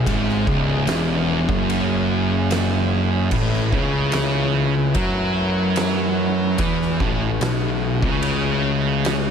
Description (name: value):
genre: stoner and doom metal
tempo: 74 BPM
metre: 4/4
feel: straight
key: unclear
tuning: A4 = 440 Hz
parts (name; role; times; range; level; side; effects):
- bright tonewheel organ; sustained chords; 0.0-9.3 s; A3 to E5; -31 LUFS; equal; slow rotary speaker
- thick fuzz guitar; riff; 0.0-9.3 s; C#2 to F#3; -23 LUFS; left 7 dB; distortion
- thick fuzz guitar; riff; 0.0-9.3 s; C#2 to F#3; -23 LUFS; right 10 dB; distortion
- fuzz picked electric bass; bass; 0.0-9.3 s; C#1 to F#2; -25 LUFS; equal; overdrive
- oversized low-tuned drum kit; drums; 0.1-9.2 s; crash cymbal, kick drum, ride cymbal, snare drum; -26 LUFS; equal; none
room: light reverb, small room ambience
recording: none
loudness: -18 LUFS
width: side -7 dB against mid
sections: 0.0-9.3 A section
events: none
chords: 0.0 C#m; 3.3 A5